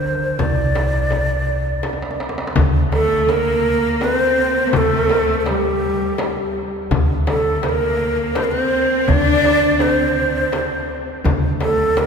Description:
Persian modal ensemble; 83 BPM; 3/4; straight; D dastgah shur; A4 = 441 Hz
breathy ney; melody; 0.0-12.1 s; G4 to D5; -19 LUFS; right 1 dB
upright bass; bass; 0.0-12.1 s; C2 to D3; -23 LUFS; equal
tombak; percussion; 0.0-12.1 s; -26 LUFS; right 1 dB
frame drum; percussion; 0.4-12.1 s; -25 LUFS; left 4 dB
clear studio cello section; second line; 2.9-12.1 s; G3 to D4; -22 LUFS; left 1 dB
wet cathedral reverb, RT60 4.4 s; recorded in a church or concert hall; -15 LUFS; side -6 dB against mid
0.0-2.6 A section; 2.6-12.1 B section
drum fill 1.8-2.6
| 0.39 1.12 1.84 | 2.57 3.29 4.02 | 4.74 5.47 6.19 | 6.91 7.64 8.36 | 9.08 9.81 10.53 | 11.25 11.97

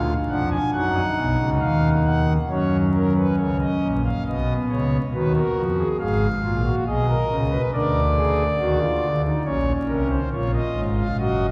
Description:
classical, baroque-style 3-part fugue for pipe organ; 69 BPM; 4/4; straight; A4 = 442 Hz
pipe organ, foundations; solo; 0.0-11.5 s; Gb1 to Ab5; -22 LUFS; equal
wet cathedral reverb, RT60 4.1 s; heard from further back in the room, vinyl crackle; -22 LUFS; mono
0.0-2.5 A section; 2.5-11.5 B section
0.0 Bb7 (rootless); 0.7 Ebm; 2.5 Gb; 4.3 Bmaj7; 6.0 Fdim/Ab; 7.7 Bb7/D; 9.5 Bbm
0.74 1.62 | 2.50 3.38 4.26 5.13 | 6.00 6.87 7.74 8.60 | 9.46 10.33 11.20

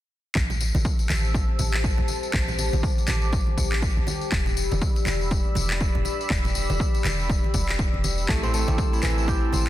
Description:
afro house; 121 BPM; 4/4; swing 59% on 16ths; A minor; A4 = 440 Hz
tambourine; percussion; 0.3-9.6 s; -34 LUFS; left 7 dB
dark analog pad; sustained chords; 1.1-9.7 s; G4 to E6; -31 LUFS; left 3 dB; chorus, sidechain pumping
warm 808-style bass; bass; 0.4-9.7 s; E1 to A1; -26 LUFS; equal; tube saturation, sidechain pumping
electronic handclaps; drums; 0.4-9.1 s; -31 LUFS; equal; overdrive
electronic kick drum; drums; 0.4-9.4 s; -25 LUFS; equal; overdrive
congas; percussion; 0.5-9.7 s; -33 LUFS; right 3 dB
kora; arpeggios; 8.3-9.7 s; E3 to G4; -28 LUFS; left 1 dB; sidechain pumping, ping-pong delay
bell-like tine electric piano; stabs; 8.3-9.7 s; A3 to G4; -31 LUFS; right 7 dB; medium stereo tremolo, sidechain pumping, ping-pong delay
digital ambience; dense, heavily limited modern master; -21 LUFS; side -14 dB against mid
0.4-9.7 A section
0.4 Am7; 4.3 Em7; 8.3 Am7
| 0.35 0.85 1.35 1.84 | 2.34 2.83 3.33 3.83 | 4.32 4.82 5.31 5.81 | 6.30 6.80 7.30 7.79 | 8.29 8.78 9.28

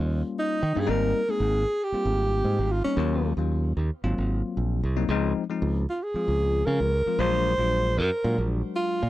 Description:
electric jazz fusion; 114 BPM; 4/4; straight; Eb dorian; A4 = 440 Hz
bell-like tine electric piano; accompaniment; 0.0-9.0 s; F3 to Gb4; -30 LUFS; moving between left 11 dB and left 1 dB; auto-pan
modern bright fingered electric bass; bass; 0.0-9.1 s; Ab1 to Eb3; -25 LUFS; right 1 dB
breathy alto saxophone; melody; 0.4-9.1 s; Db4 to C5; -26 LUFS; right 1 dB
little or no reverb; dry, close 1970s-style studio recording; -23 LUFS; side -15 dB against mid
0.0-9.1 A section
0.0 Eb7; 0.9 Abmaj9; 3.0 Ebm7; 4.0 Ab13; 5.1 Dbmaj9; 7.2 Bb7b13
0.37 | 0.89 1.42 1.94 2.47 | 2.99 3.52 4.04 4.57 | 5.09 5.62 6.14 6.67 | 7.19 7.72 8.24 8.77

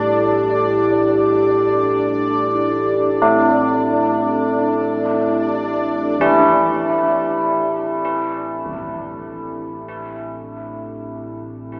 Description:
dark ambient drone; free time; A4 = 442 Hz
dark analog pad; sustained chords; 0.0-11.8 s; A2 to A4; -23 LUFS; equal; lush chorus
carillon bells; arpeggios; 0.0-11.8 s; E3 to E4; -21 LUFS; equal; tape echo
deep rumbling drone; drone; 0.0-11.8 s; A1 to A2; -37 LUFS; equal; built-in reverb
bubbling stepped-filter texture; texture; 0.0-6.2 s; D4 to D5; -24 LUFS; equal; chorus, built-in reverb
concert bass drum; percussion; 6.2-8.9 s; -41 LUFS; equal; low-pass filter on kick
wet huge ambient reverb, RT60 7.9 s; small speaker sound; -18 LUFS; mono
0.0-6.2 A section; 6.2-11.8 B section
0.0 Gsus2/A; 6.2 Am
free time

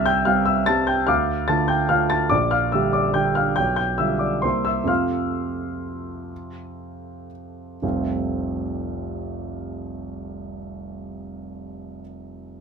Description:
classical, piano waltz; 112-151 BPM; 3/4; rubato; F major; A4 = 440 Hz
warm grand piano; solo; 0.0-12.6 s; F1 to A6; -21 LUFS; equal
light reverb; minimal, uncompressed stereo recording; -19 LUFS; side -6 dB against mid
0.0-7.8 A section; 7.8-10.8 B section
slowing down 4.2-7.8
0.0 C; 1.1 Dm; 2.3 Gm/Bb; 3.6 G7/B; 4.4 C7; 4.9 F
0.27 0.68 | 1.08 1.49 1.91 | 2.32 2.74 3.15 | 3.57 3.99 4.43 | 4.89 5.34 5.83 | 6.30 6.79 7.31 | 7.83 8.32 8.83 | 9.32 9.82 10.33

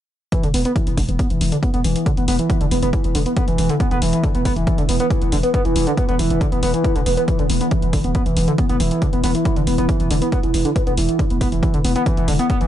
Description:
driving peak-time techno; 138 BPM; 4/4; straight; A4 = 440 Hz
overdriven synth lead; riff; 0.3-12.7 s; D3 to B3; -20 LUFS; left 1 dB; distortion, lush chorus, sidechain pumping, ping-pong delay
deep dark ambient pad; drone; 1.0-12.7 s; E3; -26 LUFS; right 3 dB; chorus, built-in reverb, sidechain pumping
electronic hi-hat; drums; 0.3-12.7 s; -30 LUFS; left 2 dB; sidechain pumping on hats
electronic kick drum; drums; 0.3-12.6 s; -20 LUFS; equal
growling 808-style bass; bass; 0.4-12.7 s; E1; -22 LUFS; equal; tube saturation, sidechain pumping, low-pass filter
little or no reverb; nothing above 10.8 kHz; -16 LUFS; side -11 dB against mid
0.3-12.7 A section
filter sweep on analog synth lead 0.3-12.7
0.3 E5
| 0.32 0.76 1.19 1.63 | 2.06 2.50 2.93 3.37 | 3.80 4.24 4.67 5.11 | 5.54 5.97 6.41 6.84 | 7.28 7.71 8.15 8.58 | 9.02 9.45 9.89 10.32 | 10.76 11.19 11.63 12.06 | 12.50

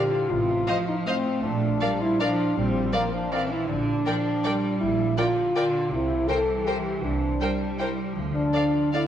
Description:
classical, orchestral ballroom waltz; 160 BPM; 3/4; uneven beats, rubato; A4 = 440 Hz
warm French horn section; sustained chords; 0.0-9.1 s; Bb3 to A4; -25 LUFS; equal
concert harp; arpeggios; 0.0-9.1 s; A2 to G4; -32 LUFS; left 6 dB
rich studio cello section; bass; 0.0-9.1 s; C3 to A3; -31 LUFS; right 2 dB
warm chamber double bass section; bass; 0.3-8.5 s; A1 to D2; -32 LUFS; right 5 dB
rich chamber violin section; melody; 0.7-9.0 s; F5 to G5; -34 LUFS; left 2 dB
clear chamber violin section; second line; 0.7-9.0 s; C5 to Eb5; -34 LUFS; left 1 dB
rich chamber viola section; accompaniment; 0.7-9.0 s; A4 to C5; -35 LUFS; equal
moderate scoring stage reverb, RT60 1.8 s; worn, warbling old tape, cassette tape, warbly pitch drift; -22 LUFS; side -10 dB against mid
0.0-9.1 A section
0.3 F7/A; 1.4 Bb; 3.7 Gm/Bb; 5.9 C7; 8.2 Dm
| 0.29 0.67 1.06 | 1.43 1.81 2.20 | 2.56 2.94 3.33 | 3.69 4.05 4.44 | 4.80 5.17 5.55 | 5.92 6.29 6.67 | 7.03 7.40 7.79 | 8.16 8.53 8.93

